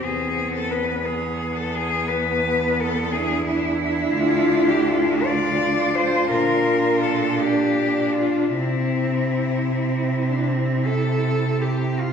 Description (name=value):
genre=classical, lyrical piece for cello ensemble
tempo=50-60 BPM (dotted quarters)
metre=12/8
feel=rubato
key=unclear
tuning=A4 = 439 Hz
part: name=clear cello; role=melody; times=0.0-11.9 s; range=E4 to D5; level=-24 LUFS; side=left 4 dB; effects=none
part: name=clear cello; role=second line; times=0.0-12.1 s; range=B3 to F4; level=-25 LUFS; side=right 3 dB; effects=none
part: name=clear cello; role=accompaniment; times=0.0-12.1 s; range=B3 to A4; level=-25 LUFS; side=equal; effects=none
part: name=rich cello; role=bass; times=0.0-12.1 s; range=D2 to C3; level=-26 LUFS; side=right 1 dB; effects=none
room=wet scoring stage reverb, RT60 1.9 s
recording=small room ambience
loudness=-19 LUFS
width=side -7 dB against mid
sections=0.0-12.1 A section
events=none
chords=0.0 E5; 4.1 Dm; 6.3 Bb; 8.5 C